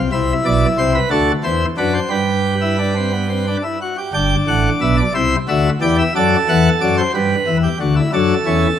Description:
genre	classical, baroque-style 3-part fugue for pipe organ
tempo	60 BPM (dotted quarters)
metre	6/8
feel	straight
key	G major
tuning	A4 = 439 Hz
part	pipe organ, plenum	solo	0.0-8.8 s	G1 to G5	-14 LUFS	equal	none
room	moderate scoring stage reverb, RT60 2.0 s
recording	none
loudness	-14 LUFS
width	side -9 dB against mid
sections	0.0-4.1 A section; 4.1-8.8 B section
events	none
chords	0.1 Cmaj9; 1.1 D7; 2.1 G; 5.2 C; 6.1 D; 7.1 G; 8.1 D

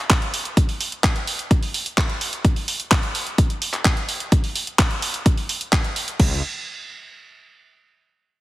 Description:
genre	EDM, festival progressive house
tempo	128 BPM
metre	4/4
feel	straight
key	unclear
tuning	A4 = 441 Hz
part	house drum kit	drums	0.1-6.3 s	crash cymbal, kick drum	-19 LUFS	equal	none
part	house drum kit	drums	0.1-6.2 s	handclaps, hi-hat	-22 LUFS	right 1 dB	none
part	wide detuned saw bass	bass	6.2-6.4 s	C#2	-24 LUFS	equal	chorus, sidechain pumping
room	light reverb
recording	heavily compressed radio sound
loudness	-19 LUFS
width	side -17 dB against mid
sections	0.0-6.2 A section; 6.2-8.1 B section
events	none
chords	none

